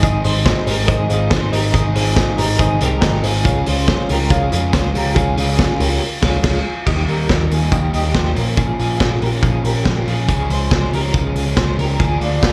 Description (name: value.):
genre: jangly indie pop.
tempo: 140 BPM.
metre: 4/4.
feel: straight.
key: Ab major.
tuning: A4 = 440 Hz.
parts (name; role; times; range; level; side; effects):
dark upright piano; accompaniment; 0.0-6.9 s; Eb4 to C6; -26 LUFS; equal; slapback echo.
overdriven semi-hollow guitar; accompaniment; 0.0-12.5 s; Ab2 to Ab4; -26 LUFS; equal; none.
twelve-string electric guitar; arpeggios; 0.0-12.5 s; D4 to C5; -27 LUFS; equal; tremolo, tape echo, slapback echo.
vintage muted picked electric bass; bass; 0.0-12.5 s; Ab1 to F2; -21 LUFS; equal; none.
vintage drum kit; drums; 0.0-12.5 s; crash cymbal, hi-hat, kick drum, snare drum; -21 LUFS; equal; none.
room: little or no reverb.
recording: live gig heard through the venue's PA, club reverb.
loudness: -17 LUFS.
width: mono.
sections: 0.0-6.9 A section; 6.9-12.5 B section.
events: band accent 6.0-6.9.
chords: 0.0 Ab; 3.5 Db; 6.9 Eb; 8.4 Bbm; 10.3 Db; 12.0 Bb7/D.